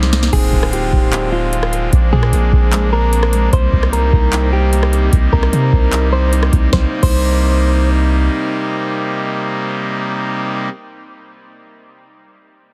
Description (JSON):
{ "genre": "hip hop, atmospheric cloud-rap", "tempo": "150 BPM", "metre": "4/4", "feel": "half-time", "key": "C minor", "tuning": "A4 = 440 Hz", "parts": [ { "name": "pipe organ, trumpet", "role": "sustained chords", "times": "0.0-10.7 s", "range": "C3 to F4", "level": "-24 LUFS", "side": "equal", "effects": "sidechain pumping" }, { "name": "concert harp", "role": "arpeggios", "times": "0.0-11.4 s", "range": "Ab3 to F4", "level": "-27 LUFS", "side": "equal", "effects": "delay" }, { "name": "long sustained 808-style bass", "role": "bass", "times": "0.0-8.3 s", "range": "D1 to C3", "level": "-17 LUFS", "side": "equal", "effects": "none" }, { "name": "booming analog drum machine", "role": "drums", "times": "0.0-7.1 s", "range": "crash cymbal, handclaps, hi-hat, kick drum, rim click, snare drum", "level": "-18 LUFS", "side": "equal", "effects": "none" }, { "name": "drifting glass-harmonics texture", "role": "texture", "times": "0.0-10.7 s", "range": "C4 to Eb5", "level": "-32 LUFS", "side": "equal", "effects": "none" }, { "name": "clean electric guitar", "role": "melody", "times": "0.3-7.9 s", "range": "F4 to C5", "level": "-24 LUFS", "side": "equal", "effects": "spring reverb, delay" } ], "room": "digital ambience", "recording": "heavily compressed radio sound, multiband compression", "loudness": "-15 LUFS", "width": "mono", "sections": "0.0-6.7 A section; 6.7-9.9 B section", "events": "drum fill 0.0-0.3", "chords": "0.3 Dm7b5; 1.9 Bb9; 3.5 Cm7", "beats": "| 0.33 0.73 1.13 1.53 | 1.93 2.33 2.73 3.13 | 3.53 3.93 4.33 4.73 | 5.13 5.53 5.93 6.33 | 6.73 7.13 7.53 7.93 | 8.33 8.73 9.13 9.53" }